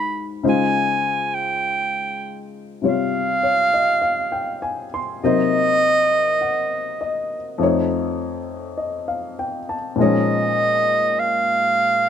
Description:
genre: jazz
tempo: 50 BPM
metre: 4/4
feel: swing 69% on 8ths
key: unclear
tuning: A4 = 439 Hz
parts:
  - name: warm clarinet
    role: melody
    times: 0.0-12.1 s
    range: Eb5 to B5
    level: -18 LUFS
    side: right 2 dB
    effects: none
  - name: warm baby grand piano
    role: accompaniment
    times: 0.0-12.1 s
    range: F2 to C6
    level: -22 LUFS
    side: left 4 dB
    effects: none
room: little or no reverb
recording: close, detailed microphones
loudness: -18 LUFS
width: side -8 dB against mid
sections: 0.0-12.1 A section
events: none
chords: 0.4 Dbmaj9; 5.2 Cm7b5; 7.6 F7b13; 10.0 Bbm7

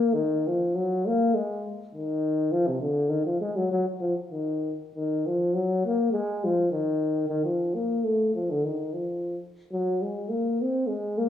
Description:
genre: alpine folk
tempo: 101 BPM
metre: 2/4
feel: straight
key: Eb dorian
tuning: A4 = 439 Hz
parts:
  - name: mellow euphonium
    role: solo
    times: 0.0-11.3 s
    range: C3 to C4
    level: -24 LUFS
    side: left 1 dB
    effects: cassette tape
room: wet spring reverb, RT60 1.8 s, small room ambience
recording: home recording on cassette, small room reverb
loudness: -24 LUFS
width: side -10 dB against mid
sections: 0.0-4.9 A section; 4.9-11.3 A section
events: none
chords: none

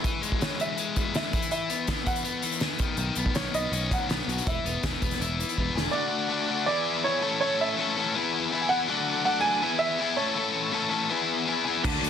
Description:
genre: indie rock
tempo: 163 BPM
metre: 4/4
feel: straight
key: E major, E mixolydian from 5.9 s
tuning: A4 = 440 Hz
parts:
  - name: biting overdriven guitar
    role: riff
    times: 0.0-12.1 s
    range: D#3 to A4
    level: -27 LUFS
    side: left 5 dB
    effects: none
  - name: overdriven electric guitar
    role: riff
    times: 0.0, 11.8-12.1 s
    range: D3 to A3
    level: -36 LUFS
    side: right 12 dB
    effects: analog chorus, slapback echo
  - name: loose indie drum kit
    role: drums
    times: 0.0-5.9, 11.8-12.1 s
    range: crash cymbal, hi-hat, kick drum, snare drum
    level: -30 LUFS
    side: equal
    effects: none
  - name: warm upright piano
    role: melody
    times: 0.4-10.9 s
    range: C#5 to G#5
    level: -29 LUFS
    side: right 3 dB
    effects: slapback echo
  - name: picked electric bass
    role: bass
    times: 3.0-5.9, 11.8-12.1 s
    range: E1 to D2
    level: -32 LUFS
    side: right 1 dB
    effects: none
  - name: combo organ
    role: sustained chords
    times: 5.9-12.1 s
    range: A4 to E6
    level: -34 LUFS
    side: right 4 dB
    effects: none
room: light reverb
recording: dense, heavily limited modern master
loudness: -24 LUFS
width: side -8 dB against mid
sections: 0.0-5.9 A section; 5.9-12.1 B section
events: drum fill 5.6-5.9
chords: 0.0 E; 1.3 Esus2; 2.8 Badd9; 4.5 E; 5.9 D; 6.7 E; 7.2 A; 8.2 E; 8.9 D; 9.6 E; 10.2 A; 11.1 E

